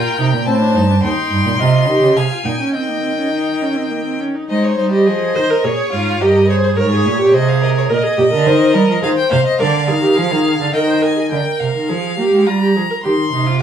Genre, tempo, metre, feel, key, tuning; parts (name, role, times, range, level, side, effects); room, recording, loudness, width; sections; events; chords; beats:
classical, baroque-style fugue for string quartet; 105 BPM; 3/4; straight; Ab major; A4 = 440 Hz
rich violin; melody; 0.0-13.6 s; C5 to C6; -22 LUFS; left 4 dB
rich violin; second line; 0.0-11.3 s; Bb4 to G5; -21 LUFS; left 3 dB
rich viola; accompaniment; 0.0-13.6 s; Bb3 to C5; -17 LUFS; right 2 dB
rich cello; bass; 0.2-13.6 s; Eb2 to Bb3; -16 LUFS; right 2 dB
moderate studio ambience, RT60 0.5 s; studio ambience; -13 LUFS; side -8 dB against mid
0.0-4.5 A section; 4.5-11.3 B section; 11.3-13.6 A section
0.5 Adim; 1.0 Cm; 2.2 Fm; 2.7 Eb; 4.5 Ab; 5.6 Bbm7 (rootless); 6.2 Gdim; 7.3 Ab/C; 7.9 Eb/Bb; 9.0 F7(no3); 9.6 Ddim; 10.7 Eb; 11.3 Ddim (rootless); 12.5 Gm7; 13.0 Cm
0.46 | 1.03 1.59 2.16 | 2.74 3.33 3.91 | 4.50 5.07 5.64 | 6.21 6.77 7.33 | 7.90 8.46 9.03 | 9.60 10.17 10.74 | 11.31 11.89 12.47 | 13.04 13.61